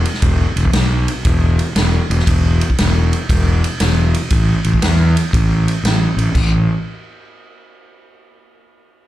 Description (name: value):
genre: blues rock power trio and southern rock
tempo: 118 BPM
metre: 4/4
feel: swing 67% on 8ths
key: unclear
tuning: A4 = 439 Hz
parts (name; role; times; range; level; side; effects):
- fuzz fingered electric bass; bass; 0.0-6.7 s; E1 to E2; -14 LUFS; equal; overdrive
- vintage drum kit; drums; 0.1-6.5 s; crash cymbal, kick drum, ride cymbal, snare drum; -18 LUFS; equal; none
room: little or no reverb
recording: live gig heard through the venue's PA, club reverb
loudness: -13 LUFS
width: side -14 dB against mid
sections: 0.0-6.3 A section; 6.3-8.4 B section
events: none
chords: none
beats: | 0.22 0.73 1.25 1.76 | 2.27 2.78 3.29 3.80 | 4.31 4.82 5.33 5.84 | 6.35